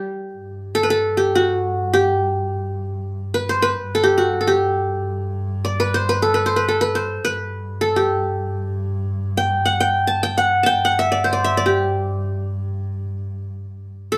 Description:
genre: arabic.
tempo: 104 BPM.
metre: 3/4.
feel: straight.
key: G maqam ajam.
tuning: A4 = 437 Hz.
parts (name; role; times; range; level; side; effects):
qanun; melody; 0.0-14.2 s; F#4 to A5; -20 LUFS; equal; none.
rich double bass; drone; 0.3-14.2 s; G2; -28 LUFS; equal; none.
room: wet studio reverb, RT60 0.5 s.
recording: band playing live in one room.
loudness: -20 LUFS.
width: mono.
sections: 0.3-14.1 A section.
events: none.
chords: none.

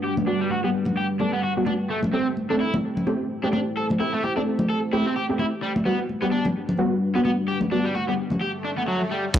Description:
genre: breakbeat, breaks.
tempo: 129 BPM.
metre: 4/4.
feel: swing 58% on 16ths.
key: unclear.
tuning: A4 = 437 Hz.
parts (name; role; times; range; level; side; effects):
deep dark ambient pad; sustained chords; 0.0-9.4 s; G3 to G5; -29 LUFS; equal; chorus, built-in reverb, sidechain pumping.
raw garage guitar; riff; 0.0-9.4 s; F#3 to A4; -27 LUFS; right 1 dB; overdrive, low-pass filter, analog delay.
congas; percussion; 0.2-8.4 s; none; -28 LUFS; left 1 dB; none.
orchestra-hit-like synth stab; stabs; 0.3-8.4 s; G3 to A4; -26 LUFS; equal; built-in reverb, analog delay.
swell and downlifter; sound effects; 8.5-9.4 s; none; -32 LUFS; left 2 dB; none.
crunchy breakbeat drum kit; drums; 9.3-9.4 s; crash cymbal, hi-hat, kick drum; -16 LUFS; equal; none.
electronic hi-hat; drums; 9.3-9.4 s; none; -32 LUFS; right 1 dB; none.
room: light reverb, studio ambience.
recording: dry, gritty hardware recording, cassette tape.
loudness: -21 LUFS.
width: side -10 dB against mid.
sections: 0.0-9.3 A section.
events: swell 8.5-9.3.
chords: 0.0 Gmaj7; 1.9 Am7; 5.6 Gmaj7.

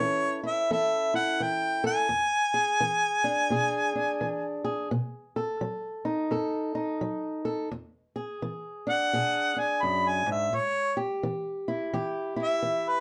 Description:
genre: acoustic country blues, solo or duo.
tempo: 85 BPM.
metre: 4/4.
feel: swing 62% on 8ths.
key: E mixolydian.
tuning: A4 = 441 Hz.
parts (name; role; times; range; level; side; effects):
clear harmonica; melody; 0.0-4.6, 8.9-13.0 s; B4 to B5; -28 LUFS; equal; none.
fingerpicked old ladder-braced acoustic guitar; accompaniment; 0.0-13.0 s; E2 to A4; -32 LUFS; equal; none.
room: moderate small room ambience, RT60 0.5 s.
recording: nothing above 10.5 kHz.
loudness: -28 LUFS.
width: mono.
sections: 0.0-7.7 A section; 7.7-13.0 B section.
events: harmonica solo 7.7-13.0.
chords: 0.0 A; 2.1 E7; 4.9 B7; 7.7 E7; 10.5 A5.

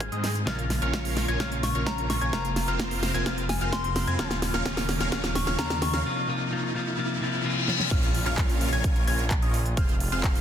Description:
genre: EDM, festival progressive house.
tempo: 129 BPM.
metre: 4/4.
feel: straight.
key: Bb minor.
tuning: A4 = 438 Hz.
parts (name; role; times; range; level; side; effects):
soft synth bell; melody; 0.0-6.0 s; Ab5 to Db6; -34 LUFS; left 4 dB; chorus, vintage 12-bit sampler grit, ping-pong delay.
dark symphonic string section; sustained chords; 0.0-10.4 s; C3 to Ab4; -40 LUFS; equal; none.
detuned saw bass; bass; 0.0-10.4 s; Eb1 to Ab2; -30 LUFS; equal; sidechain pumping.
big-room dance drum kit; drums; 0.0-10.4 s; crash cymbal, handclaps, hi-hat, snare drum; -31 LUFS; equal; none.
electronic kick drum; drums; 0.0-10.3 s; none; -26 LUFS; equal; high-pass filter on kick.
riser, reverse cymbal and impact; sound effects; 0.0-9.8 s; none; -34 LUFS; left 1 dB; none.
bright baby grand piano; arpeggios; 0.1-10.4 s; Eb6 to Ab6; -36 LUFS; left 2 dB; sidechain pumping, low-pass filter, ping-pong delay.
big supersaw lead; riff; 0.1-10.4 s; C4 to Ab5; -33 LUFS; right 1 dB; phaser, sidechain pumping, low-pass filter, ping-pong delay.
clean electric guitar; accompaniment; 0.5-7.9 s; C3 to F4; -32 LUFS; left 2 dB; sidechain pumping, ping-pong delay.
room: light reverb, digital ambience.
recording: dense, heavily limited modern master.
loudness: -24 LUFS.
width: side -9 dB against mid.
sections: 0.0-7.9 A section; 7.9-10.4 B section.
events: build-up 0.0-7.9; drum fill 0.0-6.1, 7.7; riser 0.0-7.9; reverse cymbal 7.0-7.9; drop 7.9-10.4; impact 7.9-9.8.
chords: 0.5 Bbm; 2.3 Fm; 4.2 Eb5; 6.1 C7sus4; 7.9 Bbm; 9.8 Fm.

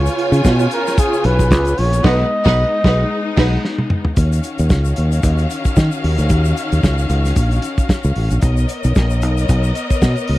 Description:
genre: disco.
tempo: 113 BPM.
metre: 4/4.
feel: swing 56% on 16ths.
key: Eb minor.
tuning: A4 = 440 Hz.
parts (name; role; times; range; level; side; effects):
breathy flugelhorn; melody; 0.0-3.6 s; Ab4 to D#5; -20 LUFS; equal; none.
warm studio string section; second line; 0.0-3.6 s; D#4 to Ab5; -21 LUFS; right 4 dB; none.
clear studio string section; sustained chords; 0.0-10.4 s; Db3 to F5; -23 LUFS; left 3 dB; none.
fingered electric bass; bass; 0.0-10.4 s; A1 to Eb3; -15 LUFS; equal; none.
warm soul drum kit; drums; 0.1-10.4 s; crash cymbal, hi-hat, kick drum, snare drum, toms; -17 LUFS; equal; none.
egg shaker; percussion; 0.1-10.3 s; none; -34 LUFS; left 24 dB; none.
room: little or no reverb.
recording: dry, close 1970s-style studio recording.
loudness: -13 LUFS.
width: side -17 dB against mid.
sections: 0.0-4.2 A section; 4.2-10.4 B section.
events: band accent 2.0-4.2; drum fill 3.6-4.2.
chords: 0.0 Db7; 2.0 B6; 4.2 Ebm9; 8.4 Bmaj9.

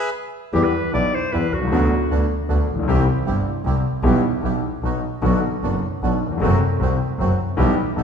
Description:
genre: tango.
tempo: 153 BPM.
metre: 3/4.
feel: rubato.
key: E minor.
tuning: A4 = 440 Hz.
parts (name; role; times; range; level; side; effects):
warm clarinet; second line; 0.5-2.3 s; F#4 to D5; -24 LUFS; left 1 dB; none.
warm concert grand piano; accompaniment; 0.5-8.0 s; F#1 to G4; -21 LUFS; left 3 dB; none.
bandoneon; stabs; 0.5-8.0 s; G3 to A4; -28 LUFS; right 4 dB; none.
clear double bass; bass; 0.5-8.0 s; F#1 to E2; -22 LUFS; right 2 dB; none.
room: wet recital hall reverb, RT60 1.7 s.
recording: recorded in a church or concert hall, nothing above 10.3 kHz.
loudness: -18 LUFS.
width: side -7 dB against mid.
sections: 0.5-8.0 A section.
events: stop 0.0-0.5.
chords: 0.0 E; 0.5 Em; 1.7 Bm/D; 2.9 C; 4.0 Em/B; 4.8 B; 5.2 Bm; 6.4 F#dim; 7.6 Em/B.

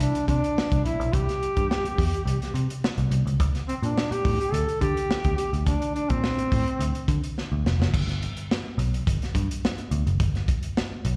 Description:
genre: funk.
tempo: 106 BPM.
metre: 4/4.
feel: straight.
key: G major.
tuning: A4 = 440 Hz.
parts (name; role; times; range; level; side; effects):
mellow duduk; melody; 0.0-7.2 s; C4 to A4; -29 LUFS; equal; slapback echo.
vintage muted picked electric bass; bass; 0.0-11.2 s; F1 to D3; -27 LUFS; equal; none.
crunchy breakbeat drum kit; drums; 0.0-11.2 s; crash cymbal, hi-hat, kick drum, snare drum; -30 LUFS; equal; none.
room: little or no reverb.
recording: live gig heard through the venue's PA, recital hall reverb.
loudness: -25 LUFS.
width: mono.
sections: 0.0-7.9 A section; 7.9-11.2 B section.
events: drum fill 7.4-7.9.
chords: 0.0 Csus2; 3.4 D7sus4; 7.9 G.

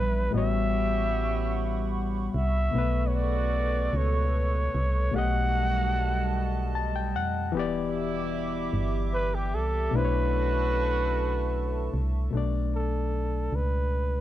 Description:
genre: slow six-eight R&B.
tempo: 50 BPM (dotted quarters).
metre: 6/8.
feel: straight.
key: B minor.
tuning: A4 = 440 Hz.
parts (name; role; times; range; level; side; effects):
breathy flugelhorn; melody; 0.0-14.2 s; G4 to F#5; -30 LUFS; right 1 dB; none.
barky reed electric piano; accompaniment; 0.0-14.2 s; A2 to A5; -31 LUFS; left 8 dB; none.
hollow soft pad; sustained chords; 0.0-12.3 s; G3 to D6; -36 LUFS; right 3 dB; chorus.
solid FM bass; bass; 0.0-14.2 s; E1 to E#2; -28 LUFS; equal; none.
clear horn section; stabs; 0.3-11.9 s; B2 to G4; -38 LUFS; right 12 dB; none.
room: small room ambience.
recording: dry, close 1970s-style studio recording.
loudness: -25 LUFS.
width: side -13 dB against mid.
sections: 0.0-12.3 A section; 12.3-14.2 B section.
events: reed electric piano fill 6.3-7.5.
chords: 0.3 A13; 2.7 Bm9; 5.1 B7b13; 7.5 Em7; 9.9 Bm11; 12.3 Bm9.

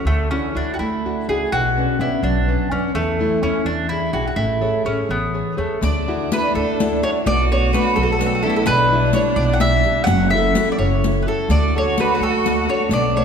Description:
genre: italian folk, Italian serenade.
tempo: 84 BPM (dotted quarters).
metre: 6/8.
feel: rubato.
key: A major, D major from 5.8 s.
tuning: A4 = 440 Hz.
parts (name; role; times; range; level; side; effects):
mandolin; melody; 0.0-13.2 s; A3 to F#5; -21 LUFS; right 1 dB; none.
upright bass; bass; 0.0-13.2 s; F#1 to F#2; -22 LUFS; equal; none.
nylon-string guitar; accompaniment; 0.1-13.2 s; B2 to C#5; -22 LUFS; left 2 dB; none.
clear cello; second line; 5.8-13.2 s; C#4 to F#4; -23 LUFS; right 2 dB; none.
riq; percussion; 5.8-13.1 s; none; -25 LUFS; left 4 dB; none.
room: wet concert hall reverb, RT60 2.4 s.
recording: recorded in a church or concert hall.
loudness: -16 LUFS.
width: side -7 dB against mid.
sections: 0.0-5.8 A section; 5.8-13.2 B section.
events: none.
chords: 0.1 Dadd9; 1.5 Bmadd9; 2.9 A/E; 3.7 E7; 4.4 Amaj7; 5.8 Dadd9; 7.3 Bm7; 8.7 Em7/B; 10.1 F#m7; 11.5 D.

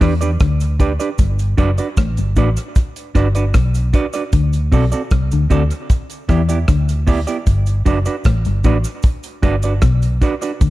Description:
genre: roots reggae.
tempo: 76 BPM.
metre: 4/4.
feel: straight.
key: G major.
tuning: A4 = 441 Hz.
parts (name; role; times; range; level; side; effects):
semi-hollow electric guitar; accompaniment; 0.0-10.5 s; B3 to D5; -22 LUFS; right 5 dB; dub echo.
mellow electric guitar; riff; 0.0-10.7 s; F#2 to E3; -22 LUFS; left 6 dB; none.
vintage muted fingered electric bass; bass; 0.0-10.7 s; F#1 to E2; -17 LUFS; equal; none.
damped 70s drum kit; drums; 0.0-10.7 s; hi-hat, kick drum, rim click; -16 LUFS; equal; none.
cabasa; percussion; 0.0-10.7 s; none; -38 LUFS; right 6 dB; none.
room: small room ambience.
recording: dark, warm production.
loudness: -14 LUFS.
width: side -17 dB against mid.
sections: 0.0-10.7 A section.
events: none.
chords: 0.0 Em7; 1.2 Gmaj7; 4.3 D7; 5.9 Em7; 7.5 Gmaj7.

